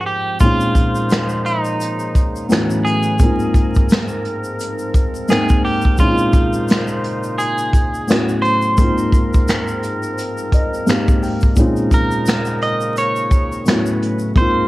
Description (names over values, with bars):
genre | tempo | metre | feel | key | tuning
lo-fi hip hop | 86 BPM | 4/4 | swing 58% on 16ths | unclear | A4 = 437 Hz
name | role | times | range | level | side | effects
clean electric guitar | melody | 0.0-14.7 s | Eb4 to Eb5 | -21 LUFS | right 1 dB | plate reverb
felt-muted upright piano | accompaniment | 0.0-14.7 s | Ab2 to G5 | -19 LUFS | left 1 dB | plate reverb
mellow woodwind section | sustained chords | 0.4-14.7 s | Ab2 to C5 | -26 LUFS | equal | plate reverb
vintage brush drum kit | drums | 0.4-14.6 s | finger snaps, hi-hat, kick drum, snare drum | -16 LUFS | equal | none
tube shaker | percussion | 0.4-14.3 s | none | -38 LUFS | left 5 dB | none
room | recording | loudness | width
moderate studio reverb, RT60 0.6 s | vinyl crackle | -14 LUFS | side -18 dB against mid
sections
0.4-14.7 A section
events
stop 0.0-0.4; felt piano fill 10.2-11.6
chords
0.4 Bbm11; 2.5 A69; 3.2 Ab69; 6.0 Bbm11; 8.1 A69; 8.8 Ab69; 11.6 Bbm11; 13.7 A69